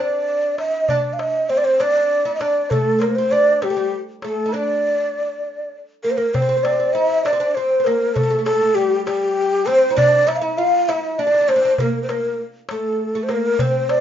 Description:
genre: Arabic maqam ensemble.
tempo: 66 BPM (dotted quarters).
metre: 6/8.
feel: straight.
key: D maqam bayati.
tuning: A4 = 439 Hz.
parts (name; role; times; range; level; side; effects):
breathy mellow ney; melody; 0.0-14.0 s; G4 to F5; -17 LUFS; equal; none.
oud; second line; 0.0-14.0 s; G3 to F4; -24 LUFS; right 2 dB; none.
darbuka; percussion; 0.6-14.0 s; none; -24 LUFS; left 1 dB; none.
room: wet studio reverb, RT60 0.5 s.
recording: rough home demo mix, nothing above 7.5 kHz.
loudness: -16 LUFS.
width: side -9 dB against mid.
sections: 0.0-6.3 A section; 6.3-14.0 B section.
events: break 4.5-6.3.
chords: none.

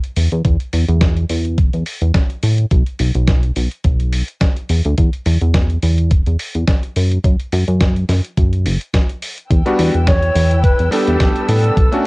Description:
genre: nu-disco, nu disco.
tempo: 106 BPM.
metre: 4/4.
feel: swing 54% on 16ths.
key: E dorian.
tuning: A4 = 440 Hz.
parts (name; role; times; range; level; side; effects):
dusty soul sampler-style drum kit; drums; 0.0-12.0 s; hi-hat, snare drum; -23 LUFS; equal; cassette tape.
chorused synth bass; bass; 0.2-11.9 s; E1 to A2; -15 LUFS; equal; none.
electronic kick drum; drums; 0.4-11.9 s; none; -14 LUFS; equal; cassette tape.
muted studio string section; sustained chords; 9.5-12.1 s; B3 to E6; -26 LUFS; left 1 dB; sidechain pumping, cassette tape.
clear electric grand piano; accompaniment; 9.7-12.1 s; G3 to A4; -17 LUFS; equal; sidechain pumping, cassette tape.
mellow hollow jazz flute; melody; 10.1-12.1 s; G4 to C#5; -19 LUFS; equal; cassette tape.
room: little or no reverb.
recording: home recording on cassette.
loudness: -13 LUFS.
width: side -24 dB against mid.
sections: 0.0-12.1 A section.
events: none.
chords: 0.5 N.C.; 9.5 Em7.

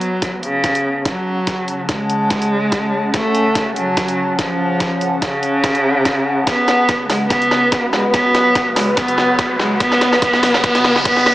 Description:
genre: heavy wobble dubstep.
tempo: 144 BPM.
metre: 4/4.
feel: swing 54% on 16ths, half-time.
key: F# minor.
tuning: A4 = 440 Hz.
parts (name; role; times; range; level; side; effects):
rich cello; melody; 0.0-11.3 s; C#3 to B3; -16 LUFS; equal; dub echo.
evolving wavetable pad; sustained chords; 0.0-11.3 s; C#3 to A5; -21 LUFS; equal; phaser, built-in reverb, sidechain pumping.
dubstep drum kit; drums; 0.0-11.3 s; hi-hat, snare drum; -20 LUFS; equal; overdrive, high-pass filter on hats, high-pass filter on snare, high-pass filter on room.
electronic kick drum; drums; 0.2-11.1 s; none; -25 LUFS; equal; overdrive.
riser; sound effects; 7.8-11.3 s; none; -26 LUFS; right 1 dB; none.
room: wet digital room reverb, RT60 1.1 s.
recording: small speaker sound.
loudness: -14 LUFS.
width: side -16 dB against mid.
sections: 0.0-11.3 A section.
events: build-up 0.0-11.3; drum fill 0.0-11.3; riser 7.8-11.3.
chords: 0.0 F#m; 6.5 Bsus2.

